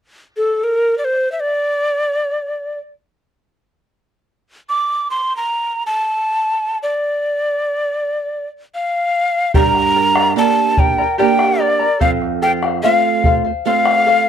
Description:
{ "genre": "andean folk, Andean ensemble", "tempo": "free time", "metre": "none", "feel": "none", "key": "unclear", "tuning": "A4 = 438 Hz", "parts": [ { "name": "breathy hollow quena", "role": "melody", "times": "0.4-14.3 s", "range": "A4 to D6", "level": "-16 LUFS", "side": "equal", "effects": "slapback echo" }, { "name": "charango", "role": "accompaniment", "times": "9.5-14.3 s", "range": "G4 to Bb5", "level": "-20 LUFS", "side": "left 7 dB", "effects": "none" }, { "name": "flamenco guitar", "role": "accompaniment", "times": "9.5-14.3 s", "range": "F2 to G4", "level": "-19 LUFS", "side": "right 18 dB", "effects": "none" }, { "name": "bombo", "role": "percussion", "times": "9.5-14.0 s", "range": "none", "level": "-18 LUFS", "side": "left 1 dB", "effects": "none" } ], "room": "light reverb", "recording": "dry, close 1970s-style studio recording", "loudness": "-14 LUFS", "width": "side -9 dB against mid", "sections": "0.0-9.5 A section; 9.5-14.3 B section", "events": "none", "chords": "0.0 N.C.; 9.5 Gm; 12.0 F" }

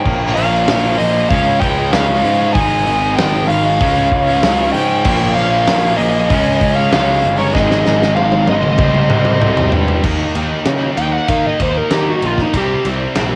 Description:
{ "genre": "hard rock", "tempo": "96 BPM", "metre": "4/4", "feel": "straight", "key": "unclear", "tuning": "A4 = 438 Hz", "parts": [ { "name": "smooth overdriven lead guitar", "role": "melody", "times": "0.0-12.9 s", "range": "Eb4 to Ab5", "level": "-19 LUFS", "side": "equal", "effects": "cassette tape" }, { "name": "octave-fuzz lead guitar", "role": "second line", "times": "0.0-9.7 s", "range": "Ab4 to Eb5", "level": "-29 LUFS", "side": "equal", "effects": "distortion, cassette tape" }, { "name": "overdriven tonewheel organ", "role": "sustained chords", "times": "0.0-10.0 s", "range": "none", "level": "barely audible", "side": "none", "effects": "none" }, { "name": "heavy high-gain guitar", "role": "riff", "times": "0.0-10.0 s", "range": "Ab2 to Eb4", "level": "-28 LUFS", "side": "equal", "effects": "none" }, { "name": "tight distorted guitar", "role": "riff", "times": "0.0-13.4 s", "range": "Ab2 to Eb4", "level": "-22 LUFS", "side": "equal", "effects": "distortion, cassette tape" }, { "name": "fuzz picked electric bass", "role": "bass", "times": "0.0-13.4 s", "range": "G1 to Eb3", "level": "-21 LUFS", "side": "equal", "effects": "overdrive" }, { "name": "big rock drum kit", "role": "drums", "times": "0.1-13.3 s", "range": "crash cymbal, hi-hat, kick drum, ride cymbal, snare drum, toms", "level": "-21 LUFS", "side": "equal", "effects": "cassette tape" } ], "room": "light reverb", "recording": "home recording on cassette", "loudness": "-14 LUFS", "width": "mono", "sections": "0.0-10.0 A section; 10.0-13.4 B section", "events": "drum fill 7.5-10.0; lead electric guitar solo 10.0-13.4", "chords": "0.1 Bbm; 1.3 Db; 2.6 Ab; 3.8 Db; 5.1 Bbm; 6.3 Db; 7.5 Ab; 8.8 Cm; 10.0 Eb5; 12.5 C5" }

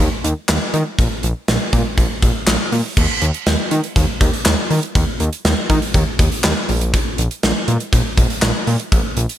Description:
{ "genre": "synth-pop", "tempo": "121 BPM", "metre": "4/4", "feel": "straight", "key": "unclear", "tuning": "A4 = 440 Hz", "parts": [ { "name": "fat analog bass", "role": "bass", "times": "0.0-9.3 s", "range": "Bb1 to Eb3", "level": "-18 LUFS", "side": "equal", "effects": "none" }, { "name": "gated 80s drum kit", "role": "drums", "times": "0.0-9.4 s", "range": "crash cymbal, handclaps, hi-hat, kick drum, snare drum", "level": "-17 LUFS", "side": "equal", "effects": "gated reverb" } ], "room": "light reverb", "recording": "bright 1980s-style digital production", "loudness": "-15 LUFS", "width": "side -12 dB against mid", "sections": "0.0-3.0 A section; 3.0-9.4 B section", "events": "none", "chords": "none" }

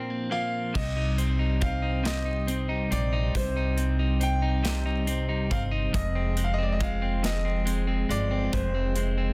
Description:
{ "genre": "six-eight pop ballad", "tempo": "46 BPM (dotted quarters)", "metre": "6/8", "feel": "straight", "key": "C minor", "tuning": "A4 = 440 Hz", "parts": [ { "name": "clear concert grand piano", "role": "melody", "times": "0.0-9.3 s", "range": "C5 to G5", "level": "-36 LUFS", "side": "equal", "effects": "plate reverb" }, { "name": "clean electric guitar", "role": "accompaniment", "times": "0.0-9.3 s", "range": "F2 to Eb4", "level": "-33 LUFS", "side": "equal", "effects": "none" }, { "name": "twelve-string electric guitar", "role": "arpeggios", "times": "0.0-9.3 s", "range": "F3 to F4", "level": "-38 LUFS", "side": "equal", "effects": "tremolo, digital delay" }, { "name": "upright bass", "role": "bass", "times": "0.8-9.3 s", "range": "F1 to C2", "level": "-30 LUFS", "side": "equal", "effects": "none" }, { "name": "modern studio drum kit", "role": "drums", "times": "0.8-9.2 s", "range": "crash cymbal, hi-hat, kick drum, snare drum", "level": "-34 LUFS", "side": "equal", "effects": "none" } ], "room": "light reverb", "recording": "dense, heavily limited modern master", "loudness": "-27 LUFS", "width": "mono", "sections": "0.8-9.3 A section", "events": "break 0.0-0.8", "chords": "0.0 Bbadd9; 0.8 Cm; 5.9 Fm" }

